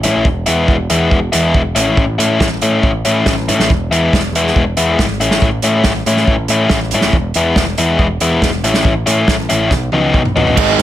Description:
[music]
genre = indie rock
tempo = 140 BPM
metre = 4/4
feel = straight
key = E major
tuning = A4 = 441 Hz
[part]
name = biting overdriven guitar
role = riff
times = 0.0-10.8 s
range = G#2 to E4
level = -14 LUFS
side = left 2 dB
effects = none
[part]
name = growling picked electric bass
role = bass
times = 0.0-10.8 s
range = E1 to A2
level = -18 LUFS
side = right 1 dB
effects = overdrive
[part]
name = loose indie drum kit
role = drums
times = 0.0-10.8 s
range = crash cymbal, hi-hat, kick drum, snare drum, toms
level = -16 LUFS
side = right 1 dB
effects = none
[part]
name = crunchy overdriven guitar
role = riff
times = 10.6-10.8 s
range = G#2 to G#4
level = -13 LUFS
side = right 11 dB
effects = lush chorus
[sound]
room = light reverb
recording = none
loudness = -11 LUFS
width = side -12 dB against mid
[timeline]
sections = 0.0-10.6 A section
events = drum fill 9.7-10.6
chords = 0.3 E; 1.8 A; 3.7 E; 5.2 A; 7.1 E; 8.6 A; 9.7 B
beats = | 0.27 0.69 1.12 1.55 | 1.98 2.41 2.84 3.27 | 3.70 4.13 4.56 4.99 | 5.42 5.85 6.28 6.71 | 7.14 7.57 8.00 8.43 | 8.86 9.29 9.72 10.15 | 10.58

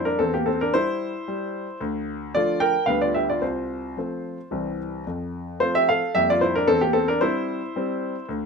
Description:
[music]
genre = classical-period piano sonatina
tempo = 112 BPM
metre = 3/4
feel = straight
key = unclear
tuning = A4 = 439 Hz
[part]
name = warm grand piano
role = solo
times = 0.0-8.5 s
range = C2 to G5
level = -22 LUFS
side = equal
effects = none
[sound]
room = moderate studio reverb, RT60 0.5 s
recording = minimal, uncompressed stereo recording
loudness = -21 LUFS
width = side -5 dB against mid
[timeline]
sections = 0.0-8.5 A section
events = none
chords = 0.2 C/E; 1.8 Dm; 2.9 G7/D; 3.4 F/C; 4.5 C; 5.1 F; 6.2 Gm7/F; 6.7 C/E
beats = | 0.20 0.73 1.27 | 1.80 2.34 2.87 | 3.42 3.97 4.52 | 5.07 5.61 6.15 | 6.69 7.22 7.75 | 8.29

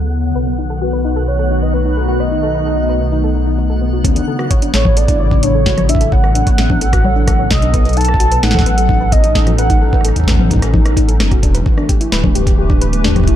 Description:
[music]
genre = IDM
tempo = 130 BPM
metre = 4/4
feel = straight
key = D major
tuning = A4 = 440 Hz
[part]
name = hollow soft pad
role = sustained chords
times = 0.0-13.4 s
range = C#3 to B4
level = -20 LUFS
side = left 1 dB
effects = ensemble chorus
[part]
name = dark detuned saw bass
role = bass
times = 0.0-13.4 s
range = D1 to D2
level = -16 LUFS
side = equal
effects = none
[part]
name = twinkling granular texture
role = texture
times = 0.0-4.1 s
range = F#5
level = -31 LUFS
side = equal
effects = built-in reverb
[part]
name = soft round pluck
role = arpeggios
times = 0.4-13.4 s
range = B3 to C#5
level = -22 LUFS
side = left 4 dB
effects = chorus, tape echo
[part]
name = warm velvety synth lead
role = melody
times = 0.8-10.0 s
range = B4 to A5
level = -20 LUFS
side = right 1 dB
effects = chorus, ping-pong delay
[part]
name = booming analog drum machine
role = drums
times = 4.0-13.4 s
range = congas, hi-hat, rim click, snare drum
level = -20 LUFS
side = left 1 dB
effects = low-pass filter on perc, low-pass filter on snare, low-pass filter on hats, low-pass filter on room
[part]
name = electronic kick drum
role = drums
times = 4.0-13.4 s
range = none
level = -14 LUFS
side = equal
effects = none
[sound]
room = little or no reverb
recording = dark, warm production, low-pass filter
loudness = -11 LUFS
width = side -11 dB against mid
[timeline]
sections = 0.0-4.0 A section; 4.0-13.4 B section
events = filter sweep on drum 0.0-4.0; filter sweep 0.0-4.0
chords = 0.4 B7; 4.0 Dmaj7; 7.7 B7; 11.4 Em7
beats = | 0.35 0.81 1.28 1.74 | 2.20 2.66 3.12 3.58 | 4.04 4.51 4.97 5.43 | 5.89 6.35 6.82 7.28 | 7.74 8.20 8.66 9.12 | 9.58 10.04 10.51 10.97 | 11.43 11.89 12.35 12.81 | 13.28

